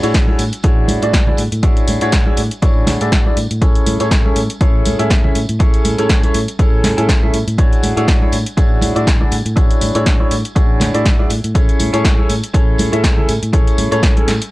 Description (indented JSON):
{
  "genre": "filtered disco house",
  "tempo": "121 BPM",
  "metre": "4/4",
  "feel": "swing 56% on 16ths",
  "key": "A major",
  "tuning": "A4 = 440 Hz",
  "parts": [
    { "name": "bright concert grand piano", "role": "accompaniment", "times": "0.0-14.3 s", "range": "C#4 to E5", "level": "-19 LUFS", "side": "equal", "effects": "phaser, sidechain pumping, low-pass filter" },
    { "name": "fingered electric bass", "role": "bass", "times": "0.0-14.4 s", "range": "A1 to A2", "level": "-20 LUFS", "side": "equal", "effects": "sidechain pumping, low-pass filter" },
    { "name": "punchy analog drum machine", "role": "drums", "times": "0.0-14.5 s", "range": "hi-hat, snare drum", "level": "-21 LUFS", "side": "equal", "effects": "sidechain pumping on hats, sidechain pumping on cymbals" },
    { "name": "tambourine and congas", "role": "percussion", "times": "0.0-14.5 s", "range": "none", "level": "-24 LUFS", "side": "right 1 dB", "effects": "sidechain pumping on perc, low-pass filter on perc" },
    { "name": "electronic kick drum", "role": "drums", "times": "0.1-14.1 s", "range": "none", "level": "-13 LUFS", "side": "equal", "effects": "none" }
  ],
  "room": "digital ambience",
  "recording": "dry, gritty hardware recording, transformer saturation, cassette tape",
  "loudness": "-12 LUFS",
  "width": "side -18 dB against mid",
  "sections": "0.0-14.5 A section",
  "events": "none",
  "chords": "0.0 E13/A; 3.4 Amaj7; 7.6 E13/A; 11.3 Amaj7"
}